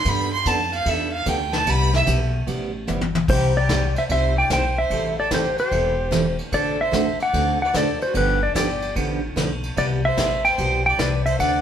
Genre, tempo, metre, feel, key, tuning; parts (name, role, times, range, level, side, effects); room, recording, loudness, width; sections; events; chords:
country, western swing; 148 BPM; 4/4; swing 66% on 8ths; C major; A4 = 438 Hz
clear fiddle; second line; 0.0-11.6 s; F#4 to C6; -27 LUFS; right 2 dB
upright bass; bass; 0.0-11.6 s; E1 to G2; -25 LUFS; left 1 dB
picked steel-string acoustic guitar; accompaniment; 0.1-11.6 s; C3 to A4; -26 LUFS; right 4 dB
vintage brush drum kit; drums; 0.1-11.5 s; crash cymbal, hi-hat, kick drum, ride cymbal, snare drum, toms; -27 LUFS; left 1 dB
clean lap steel guitar; melody; 3.3-11.6 s; B4 to G5; -21 LUFS; left 1 dB
wet studio reverb, RT60 0.7 s; band playing live in one room; -18 LUFS; side -9 dB against mid
0.0-3.3 A section; 3.3-11.6 B section
fiddle solo 0.0-3.3; drum fill 2.9-3.3
0.1 Gadd9; 1.7 Cmaj7; 3.3 C; 4.9 Am7; 6.5 D7/A; 8.2 G7; 9.8 Cmaj7